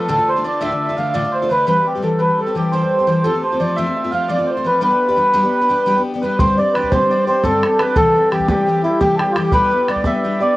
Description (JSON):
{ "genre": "celtic folk, Celtic slip jig", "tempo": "114 BPM (dotted quarters)", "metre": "9/8", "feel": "straight", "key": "G mixolydian", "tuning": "A4 = 440 Hz", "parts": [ { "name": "mellow accordion", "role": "melody", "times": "0.0-10.6 s", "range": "E4 to F5", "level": "-16 LUFS", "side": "equal", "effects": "none" }, { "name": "hammered dulcimer", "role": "second line", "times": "0.0-10.6 s", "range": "E4 to F5", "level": "-24 LUFS", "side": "right 2 dB", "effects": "cassette tape" }, { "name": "picked twelve-string acoustic guitar", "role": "accompaniment", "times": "0.0-10.6 s", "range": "D2 to G4", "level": "-21 LUFS", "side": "left 2 dB", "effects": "cassette tape" }, { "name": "bodhran", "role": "percussion", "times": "6.4-10.1 s", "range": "none", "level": "-20 LUFS", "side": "equal", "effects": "none" } ], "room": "moderate small room reverb, RT60 0.5 s", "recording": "home recording on cassette", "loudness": "-14 LUFS", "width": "side -17 dB against mid", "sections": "0.0-6.4 A section; 6.4-10.6 B section", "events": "none", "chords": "0.1 Dm; 1.7 C/E; 3.2 F; 4.8 G; 6.4 Gsus4; 8.0 C; 9.5 G" }